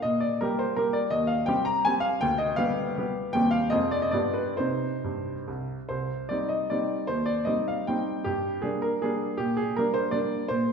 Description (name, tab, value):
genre	classical, romantic triple-time dance for piano with dotted rhythms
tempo	127-172 BPM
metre	3/4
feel	rubato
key	C minor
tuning	A4 = 440 Hz
part	clear baby grand piano	solo	0.0-10.7 s	C2 to Bb5	-25 LUFS	equal	none
room	wet recital hall reverb, RT60 1.5 s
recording	heard from further back in the room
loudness	-25 LUFS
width	side -6 dB against mid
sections	0.0-5.9 A section; 5.9-10.7 B section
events	none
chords	0.0 Gm/Bb; 1.1 Cm/Eb; 2.2 G7/D; 3.3 Cm/Eb; 3.7 Fm; 4.1 G7; 4.6 Cm; 7.1 Cm/Eb; 8.3 Gm; 9.4 Gm/Bb